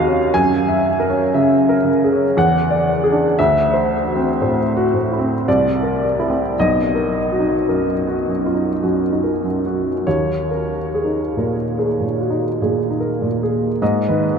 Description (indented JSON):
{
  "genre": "classical, impressionist solo piano",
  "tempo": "45-60 BPM",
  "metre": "3/4",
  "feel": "rubato",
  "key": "unclear",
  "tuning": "A4 = 440 Hz",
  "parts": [
    { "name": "warm baby grand piano", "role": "solo", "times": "0.0-14.4 s", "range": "B1 to G#5", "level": "-15 LUFS", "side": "equal", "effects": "none" }
  ],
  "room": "wet huge ambient reverb, RT60 7.3 s",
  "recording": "in a vast, echoing space",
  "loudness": "-15 LUFS",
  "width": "side -6 dB against mid",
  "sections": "0.0-13.8 A section",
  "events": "none",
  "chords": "0.3 F#9; 2.4 E9; 3.4 D9; 5.5 C9; 6.6 Bmaj7; 10.1 D#7sus4; 13.8 G#m"
}